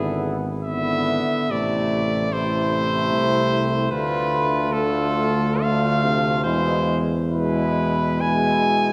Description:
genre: classical, hymn-like piece for brass band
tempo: 62-76 BPM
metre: 3/4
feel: rubato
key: unclear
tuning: A4 = 439 Hz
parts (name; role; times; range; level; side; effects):
- warm cornet; melody; 0.0-8.9 s; G#4 to G#5; -26 LUFS; equal; none
- mellow flugelhorn; second line; 0.0-8.9 s; E4 to F4; -31 LUFS; equal; none
- mellow trombone section; accompaniment; 0.0-8.9 s; G#3 to B3; -28 LUFS; equal; none
- warm euphonium; accompaniment; 0.0-8.9 s; B2 to D3; -31 LUFS; equal; none
- mellow tuba; bass; 0.0-8.8 s; G#1 to E2; -28 LUFS; equal; none
room: wet church reverb, RT60 2.7 s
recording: none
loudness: -21 LUFS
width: mono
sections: 0.0-8.9 A section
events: none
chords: 0.0 E7/G#; 1.5 Am; 3.9 Bm7b5/D; 6.4 E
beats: 0.66 | 1.51 2.33 3.13 | 3.92 4.74 5.63 | 6.45 7.29 8.22

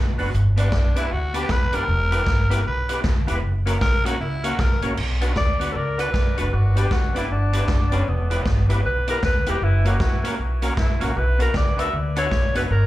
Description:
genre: ska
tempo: 155 BPM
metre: 4/4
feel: swing 62% on 8ths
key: B harmonic minor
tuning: A4 = 440 Hz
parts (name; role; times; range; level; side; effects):
- upright bass; bass; 0.0-12.9 s; E1 to E2; -22 LUFS; equal; none
- electric guitar at the edge of break-up; accompaniment; 0.2-12.7 s; A#3 to B4; -33 LUFS; right 1 dB; slapback echo
- percussive tonewheel organ; stabs; 0.2-12.7 s; A#3 to B4; -30 LUFS; left 2 dB; overdrive, chorus vibrato, slow rotary speaker, tape echo
- swinging big-band drum kit; drums; 0.2-12.6 s; crash cymbal, hi-hat, kick drum, snare drum; -24 LUFS; equal; none
- growling tenor saxophone; melody; 0.6-4.8 s; D4 to B4; -25 LUFS; equal; slapback echo
- warm alto saxophone; melody; 5.4-12.9 s; B3 to E5; -25 LUFS; left 1 dB; tape echo, slapback echo
room: small room ambience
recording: live gig heard through the venue's PA, club reverb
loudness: -19 LUFS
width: side -16 dB against mid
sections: 0.0-5.0 A section; 5.0-12.9 A section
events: tenor saxophone solo 0.0-5.0; alto saxophone solo 5.0-12.9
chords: 0.3 G; 1.9 Em; 3.4 F#; 5.0 Bm; 6.5 G; 8.1 Em; 9.6 F#; 11.2 Bm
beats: | 0.34 0.72 1.11 1.50 | 1.88 2.27 2.66 3.04 | 3.43 3.82 4.20 4.59 | 4.98 5.36 5.75 6.14 | 6.52 6.91 7.30 7.68 | 8.07 8.46 8.84 9.23 | 9.62 10.00 10.39 10.77 | 11.16 11.54 11.93 12.32 | 12.70

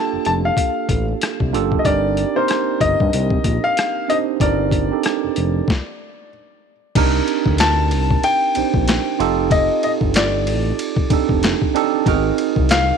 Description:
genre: R&B, neo-soul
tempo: 94 BPM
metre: 4/4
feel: swing 58% on 16ths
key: C dorian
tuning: A4 = 441 Hz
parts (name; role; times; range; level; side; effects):
- clear grand piano; melody; 0.0-13.0 s; C5 to A5; -20 LUFS; left 4 dB; none
- tine electric piano; accompaniment; 0.0-13.0 s; Bb3 to C5; -20 LUFS; right 16 dB; none
- smooth synth bass; bass; 0.1-12.9 s; F1 to G2; -21 LUFS; left 2 dB; none
- boom bap sampler-style drum kit; drums; 0.3-12.9 s; crash cymbal, handclaps, hi-hat, kick drum, ride cymbal, rim click, snare drum; -21 LUFS; left 2 dB; overdrive
room: light reverb, digital ambience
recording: 1960s-style stereo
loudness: -16 LUFS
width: side -6 dB against mid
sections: 0.0-7.0 A section; 7.0-13.0 B section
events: stop 5.7-7.0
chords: 0.0 Gm9; 1.8 Cm9/G; 6.3 N.C.; 7.0 Cm9; 9.2 F13; 12.1 Ab9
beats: 0.57 1.21 | 1.85 2.48 3.12 3.76 | 4.40 5.04 5.68 6.31 | 6.95 7.59 8.23 8.87 | 9.51 10.14 10.78 11.42 | 12.06 12.70

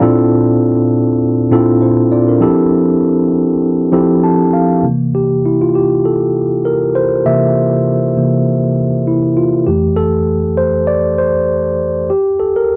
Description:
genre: soul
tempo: 99 BPM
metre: 4/4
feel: swing 54% on 16ths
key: unclear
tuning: A4 = 438 Hz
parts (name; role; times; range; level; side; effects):
- mellow tine electric piano; solo; 0.0-12.8 s; F2 to A5; -13 LUFS; equal; none
room: light reverb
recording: dry, close 1970s-style studio recording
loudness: -13 LUFS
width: mono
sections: 0.0-4.8 A section; 4.8-12.8 B section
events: tine electric piano fill 3.9-4.8; tine electric piano solo 4.8-12.8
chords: 0.0 Bbmaj9#11; 2.4 Fmaj9; 4.8 C7; 9.7 Fmaj7; 12.1 Bb5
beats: | 0.01 0.62 1.22 1.82 | 2.43 3.03 3.63 4.24 | 4.84 5.45 6.05 6.65 | 7.26 7.86 8.47 9.07 | 9.68 10.28 10.89 11.49 | 12.10 12.70

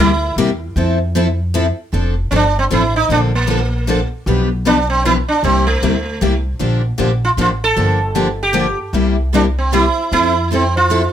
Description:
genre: acoustic string swing (jazz manouche)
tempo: 154 BPM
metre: 3/4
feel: swing 61% on 8ths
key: F major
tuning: A4 = 440 Hz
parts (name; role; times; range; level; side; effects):
- sitar; melody; 0.0-11.1 s; A3 to A4; -16 LUFS; right 3 dB; plate reverb
- picked steel-string acoustic guitar; accompaniment; 0.0-11.0 s; B2 to B4; -18 LUFS; left 5 dB; none
- picked steel-string acoustic guitar; accompaniment; 0.0-11.0 s; B2 to B4; -24 LUFS; right 7 dB; none
- upright bass; bass; 0.0-11.1 s; F1 to F2; -18 LUFS; equal; none
room: light reverb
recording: none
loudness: -13 LUFS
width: side -10 dB against mid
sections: 0.0-1.9 A section; 1.9-11.1 B section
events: sitar solo 0.0-1.9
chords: 0.0 C7; 0.8 Fmaj7; 1.9 F6; 3.1 Bbmaj7; 4.3 G7/B; 5.4 C7; 6.6 Bb6; 7.8 Gm7; 8.9 C7; 10.1 Fmaj7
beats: 0.38 | 0.77 1.15 1.54 | 1.93 2.32 2.71 | 3.10 3.49 3.88 | 4.26 4.66 5.04 | 5.43 5.82 6.21 | 6.60 6.99 7.38 | 7.77 8.16 8.55 | 8.95 9.34 9.73 | 10.12 10.51 10.90

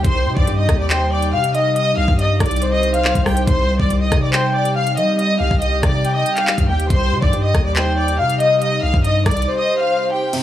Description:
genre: hip hop, drill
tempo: 140 BPM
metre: 4/4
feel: half-time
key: C minor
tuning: A4 = 440 Hz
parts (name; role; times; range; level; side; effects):
- rich studio violin section; melody; 0.0-10.3 s; G4 to F6; -20 LUFS; left 1 dB; none
- warbly tape-like pad; sustained chords; 0.0-10.3 s; C3 to G4; -24 LUFS; equal; chorus, built-in reverb
- long sustained 808-style bass; bass; 0.0-9.5 s; C2 to G3; -20 LUFS; equal; none
- drill drum kit; drums; 0.0-10.4 s; crash cymbal, handclaps, hi-hat, kick drum, rim click; -19 LUFS; equal; none
- downlifter; sound effects; 0.0, 10.3-10.4 s; none; -36 LUFS; equal; none
- breathy flute-like synth lead; second line; 0.9-10.3 s; C5 to G5; -21 LUFS; left 2 dB; chorus, tape echo
- dark baby grand piano; accompaniment; 10.3-10.4 s; C3; -21 LUFS; right 2 dB; low-pass filter
room: digital ambience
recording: dry, gritty hardware recording, small room ambience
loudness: -14 LUFS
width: side -12 dB against mid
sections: 0.0-10.3 A section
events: silent gap 9.5-10.3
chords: 0.0 Cm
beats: | 0.05 0.47 0.90 1.33 | 1.76 2.19 2.62 3.05 | 3.47 3.90 4.33 4.76 | 5.19 5.62 6.05 6.47 | 6.90 7.33 7.76 8.19 | 8.62 9.05 9.47 9.90 | 10.33

